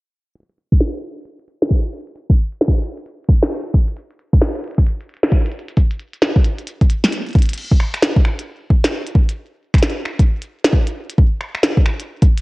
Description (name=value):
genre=IDM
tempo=133 BPM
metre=4/4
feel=swing 62% on 16ths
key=none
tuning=none
part: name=glitchy drum kit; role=drums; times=0.4-12.4 s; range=crash cymbal, finger snaps, hi-hat, snare drum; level=-19 LUFS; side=equal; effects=none
part: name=electronic kick drum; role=drums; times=0.7-12.3 s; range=none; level=-13 LUFS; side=equal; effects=none
room=light reverb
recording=worn, warbling old tape, cassette tape, warbly pitch drift, low-pass filter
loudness=-15 LUFS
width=side -22 dB against mid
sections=0.4-7.6 A section; 7.6-12.4 B section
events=filter sweep 0.4-7.6; drum fill 7.3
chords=none